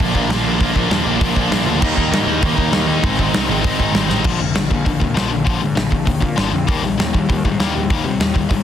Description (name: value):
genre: punk rock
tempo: 197 BPM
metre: 4/4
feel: straight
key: Bb mixolydian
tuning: A4 = 440 Hz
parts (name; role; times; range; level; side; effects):
- sludgy distorted guitar; riff; 0.0-4.2 s; Ab2 to Eb4; -20 LUFS; right 13 dB; overdrive
- tight distorted guitar; riff; 0.0-8.6 s; Ab2 to Eb4; -19 LUFS; left 7 dB; distortion
- fuzz picked electric bass; bass; 0.0-8.6 s; F1 to C3; -22 LUFS; equal; overdrive
- big rock drum kit; drums; 0.0-8.6 s; crash cymbal, hi-hat, kick drum, snare drum; -19 LUFS; equal; none
room: little or no reverb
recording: dense, heavily limited modern master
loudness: -15 LUFS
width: side -10 dB against mid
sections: 0.0-4.2 A section; 4.2-8.6 B section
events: drum fill 4.1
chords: 0.0 Bb; 1.8 Eb; 3.0 Ab; 4.2 Bb; 6.7 Eb